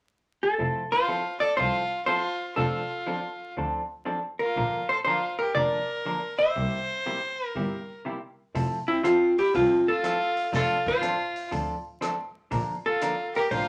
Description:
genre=country, western swing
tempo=121 BPM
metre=4/4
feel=swing 67% on 8ths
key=F major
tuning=A4 = 441 Hz
part: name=vintage hollow-body jazz guitar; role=melody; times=0.4-13.7 s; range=E4 to E5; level=-27 LUFS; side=equal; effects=none
part: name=vintage hollow-body jazz guitar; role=accompaniment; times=0.6-13.7 s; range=C3 to Bb4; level=-34 LUFS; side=equal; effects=none
part: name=rich double bass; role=bass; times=0.6-13.6 s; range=F1 to D2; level=-34 LUFS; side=equal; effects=none
part: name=clear fiddle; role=second line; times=0.9-13.7 s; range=C4 to C5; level=-32 LUFS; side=equal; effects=none
part: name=swinging big-band drum kit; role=drums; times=8.6-13.7 s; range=hi-hat, kick drum, rim click, snare drum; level=-43 LUFS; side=equal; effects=none
room=wet club reverb, RT60 0.6 s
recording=vinyl crackle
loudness=-27 LUFS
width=mono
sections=0.6-8.5 A section; 8.5-13.7 B section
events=none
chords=0.0 N.C.; 0.6 Fmaj7; 2.6 Dm7/F; 4.6 Bb; 6.6 C7; 8.5 Fmaj7; 10.5 Dm7/F; 12.5 Bb

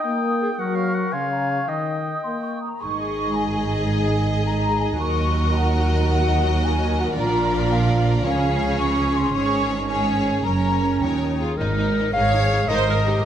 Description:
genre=cinematic, heroic adventure film score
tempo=110 BPM (dotted quarters)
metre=6/8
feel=straight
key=unclear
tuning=A4 = 441 Hz
part: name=clear clarinet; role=second line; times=0.0-2.6, 11.4-13.3 s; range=Ab4 to F5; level=-25 LUFS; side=left 2 dB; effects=none
part: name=clear oboe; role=second line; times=0.0-2.6 s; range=F5 to Ab5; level=-30 LUFS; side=right 1 dB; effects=none
part: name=mellow large flute ensemble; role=second line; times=0.0-11.6 s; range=F5 to Eb6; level=-26 LUFS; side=equal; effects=none
part: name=mellow French horn section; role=sustained chords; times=0.0-2.7 s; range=Db3 to Bb3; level=-25 LUFS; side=left 2 dB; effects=none
part: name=rich symphonic violin section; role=melody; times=2.8-13.1 s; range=Eb4 to Eb5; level=-32 LUFS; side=left 4 dB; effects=none
part: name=warm symphonic violin section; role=second line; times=2.8-13.3 s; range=Eb4 to Db5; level=-29 LUFS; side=left 2 dB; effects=none
part: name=rich symphonic viola section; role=accompaniment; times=2.8-13.2 s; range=Db4 to C5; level=-28 LUFS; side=equal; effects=none
part: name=warm trombone section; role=sustained chords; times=2.8-11.4 s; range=Bb2 to Eb4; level=-27 LUFS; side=right 3 dB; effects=none
part: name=rich symphonic cello section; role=bass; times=2.8-13.2 s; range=Eb2 to Db3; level=-26 LUFS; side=right 2 dB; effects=none
part: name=warm symphonic double bass section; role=bass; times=2.8-13.2 s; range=Gb1 to Eb2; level=-24 LUFS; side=right 2 dB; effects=none
room=moderate scoring stage reverb, RT60 1.6 s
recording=none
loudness=-19 LUFS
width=side -10 dB against mid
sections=0.0-2.8 A section; 2.8-11.6 B section; 11.6-13.3 A section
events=none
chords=0.0 Eb; 0.6 Gb; 1.7 Eb; 2.8 Absus4; 5.0 Ebm7; 7.2 Bb; 8.3 Db; 9.3 Absus4; 10.4 Gb; 11.0 Eb7; 11.6 Absus2

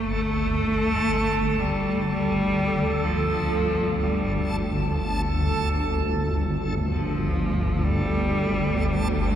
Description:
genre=ambient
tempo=free time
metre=none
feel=none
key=unclear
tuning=A4 = 439 Hz
part: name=rich cello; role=melody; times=0.0-9.4 s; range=F3 to A3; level=-27 LUFS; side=equal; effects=tape echo
part: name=tubular bells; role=arpeggios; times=0.0-9.4 s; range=none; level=barely audible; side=none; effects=none
part: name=swarming drone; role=drone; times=0.0-9.4 s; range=G1 to D2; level=-25 LUFS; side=equal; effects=built-in reverb
part: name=backwards swelling texture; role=texture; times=0.0-9.4 s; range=A4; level=-28 LUFS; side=right 2 dB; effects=built-in reverb
room=wet cathedral reverb, RT60 5.1 s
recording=none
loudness=-22 LUFS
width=side -10 dB against mid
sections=0.0-9.4 A section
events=none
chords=0.0 Gsus2

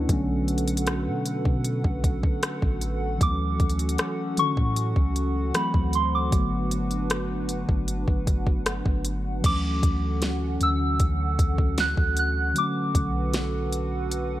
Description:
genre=contemporary R&B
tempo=77 BPM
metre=4/4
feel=straight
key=D major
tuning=A4 = 439 Hz
part: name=mellow tine electric piano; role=accompaniment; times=0.0-14.4 s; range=D3 to B4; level=-30 LUFS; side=left 1 dB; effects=none
part: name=hollow soft pad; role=sustained chords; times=0.0-14.4 s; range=D3 to F#5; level=-33 LUFS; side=right 1 dB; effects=chorus, sidechain pumping
part: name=soft 808-style bass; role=bass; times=0.0-14.4 s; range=G1 to D3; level=-28 LUFS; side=equal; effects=none
part: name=smooth R&B drum kit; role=drums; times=0.1-14.3 s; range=crash cymbal, hi-hat, kick drum, rim click, snare drum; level=-25 LUFS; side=equal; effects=none
part: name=soft synth bell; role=melody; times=3.2-14.4 s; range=B5 to F#6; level=-28 LUFS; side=right 1 dB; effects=chorus, phaser
room=light reverb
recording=none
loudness=-22 LUFS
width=side -14 dB against mid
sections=0.0-9.4 A section; 9.4-14.4 B section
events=none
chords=0.1 Bm7; 3.2 Dmaj7; 5.5 D7; 6.3 Gmaj7; 9.4 Dmaj7; 12.6 Bm7

